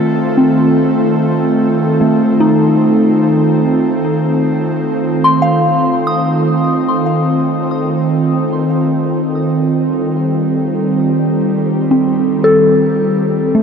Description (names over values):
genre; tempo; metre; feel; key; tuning
ambient; 55 BPM; 4/4; straight; F mixolydian; A4 = 440 Hz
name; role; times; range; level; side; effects
airy breathy pad; sustained chords; 0.0-13.6 s; Eb3 to A4; -13 LUFS; right 1 dB; chorus
soft synth bell; arpeggios; 0.0-13.6 s; A3 to Eb6; -15 LUFS; left 1 dB; chorus, phaser, ping-pong delay
room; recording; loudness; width
wet huge ambient reverb, RT60 7.1 s; none; -11 LUFS; side -6 dB against mid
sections
0.0-8.9 A section; 8.9-13.6 B section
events
none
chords
0.0 F7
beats
| 0.17 1.27 2.36 3.45 | 4.54 5.63 6.72 7.81 | 8.90 9.99 11.08 12.18 | 13.27